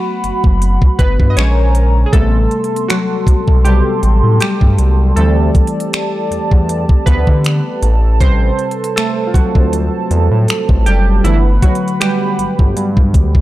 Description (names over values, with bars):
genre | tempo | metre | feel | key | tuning
contemporary R&B | 79 BPM | 4/4 | swing 54% on 16ths | A dorian | A4 = 443 Hz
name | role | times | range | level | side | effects
warm analog keys | accompaniment | 0.0-13.4 s | C3 to D#5 | -17 LUFS | equal | chorus
hollow soft pad | sustained chords | 0.0-13.4 s | F#4 to C6 | -21 LUFS | right 1 dB | chorus
smooth synth bass | bass | 0.2-13.4 s | F#1 to D3 | -13 LUFS | equal | none
trap drum kit | drums | 0.2-13.4 s | finger snaps, hi-hat, kick drum | -12 LUFS | equal | none
room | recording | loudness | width
little or no reverb | dark, warm production | -10 LUFS | side -16 dB against mid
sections
0.0-13.4 A section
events
synth keys solo 0.0-13.4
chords
0.0 Gmaj7; 1.4 Bbm7; 2.1 Am7; 5.2 D7sus4; 7.8 Am7; 11.2 Gmaj7